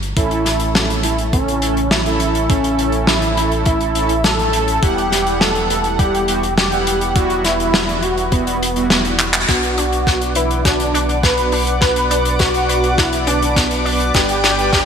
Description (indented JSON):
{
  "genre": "synthwave",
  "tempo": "103 BPM",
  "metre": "4/4",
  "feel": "straight",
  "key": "B minor",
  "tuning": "A4 = 440 Hz",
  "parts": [
    { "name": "round analog bass", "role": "bass", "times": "0.0-14.8 s", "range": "E1 to B1", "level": "-23 LUFS", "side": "equal", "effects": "sidechain pumping" },
    { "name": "warm soul drum kit", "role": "drums", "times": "0.0-14.8 s", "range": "handclaps, hi-hat, snare drum", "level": "-19 LUFS", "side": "left 1 dB", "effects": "high-pass filter on hats, high-pass filter on snare, high-pass filter on room, gated reverb" },
    { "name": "wide unison lead", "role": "melody", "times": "0.2-14.8 s", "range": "B3 to B4", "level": "-19 LUFS", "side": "equal", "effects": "digital delay" },
    { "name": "mellow synth brass", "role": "stabs", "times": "0.2-14.8 s", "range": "G2 to F#5", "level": "-23 LUFS", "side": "right 3 dB", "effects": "chorus, tremolo" },
    { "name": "electronic kick drum", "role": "drums", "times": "0.2-14.8 s", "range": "none", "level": "-17 LUFS", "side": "equal", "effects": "overdrive" },
    { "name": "chorused pulse-width pad", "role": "sustained chords", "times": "9.5-14.8 s", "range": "B4 to D6", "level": "-23 LUFS", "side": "equal", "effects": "sidechain pumping" },
    { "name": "wide unison pluck", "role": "arpeggios", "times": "9.5-14.8 s", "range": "B3 to B4", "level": "-24 LUFS", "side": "left 2 dB", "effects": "digital delay" }
  ],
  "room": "moderate lush hall reverb, RT60 2.1 s",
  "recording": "bright 1980s-style digital production",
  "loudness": "-14 LUFS",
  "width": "side -7 dB against mid",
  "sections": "0.0-9.5 A section; 9.5-14.8 B section",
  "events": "drum fill 9.2, 9.5-14.8; band accent 9.3; filter sweep on analog polysynth 9.5-14.8",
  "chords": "0.2 A; 4.8 Emadd9; 9.5 Bm; 14.1 G",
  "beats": "| 0.17 0.75 1.33 1.91 | 2.50 3.08 3.66 4.24 | 4.83 5.41 5.99 6.57 | 7.16 7.74 8.32 8.90 | 9.49 10.07 10.65 11.23 | 11.82 12.40 12.98 13.56 | 14.15 14.73"
}